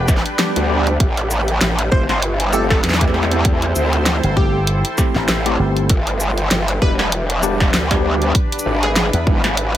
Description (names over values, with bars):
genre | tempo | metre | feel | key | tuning
glitch hop | 98 BPM | 4/4 | swing 57% on 16ths | A minor | A4 = 441 Hz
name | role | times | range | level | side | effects
slap bass with an envelope filter | bass | 0.0-0.1, 4.2-9.2 s | G1 to E2 | -18 LUFS | equal | none
granular cloud pad | texture | 0.0-9.8 s | D4 to G5 | -26 LUFS | equal | built-in reverb, sidechain pumping
growl bass | bass | 0.1-9.8 s | E1 to E2 | -18 LUFS | equal | chorus, tube saturation
electronic kick drum | drums | 0.1-9.4 s | none | -17 LUFS | equal | none
pop drum kit | drums | 0.1-9.8 s | hi-hat, shaker, snare drum | -20 LUFS | equal | none
barky tine electric piano | stabs | 0.4-9.5 s | G3 to G4 | -23 LUFS | equal | medium stereo tremolo, sidechain pumping, digital delay
plucky unison lead | melody | 1.9-9.1 s | G4 to C5 | -25 LUFS | left 1 dB | digital delay
room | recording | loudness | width
digital ambience | none | -14 LUFS | side -12 dB against mid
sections
0.0-9.8 A section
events
none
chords
0.0 G; 1.0 Am7; 5.9 G; 8.3 E7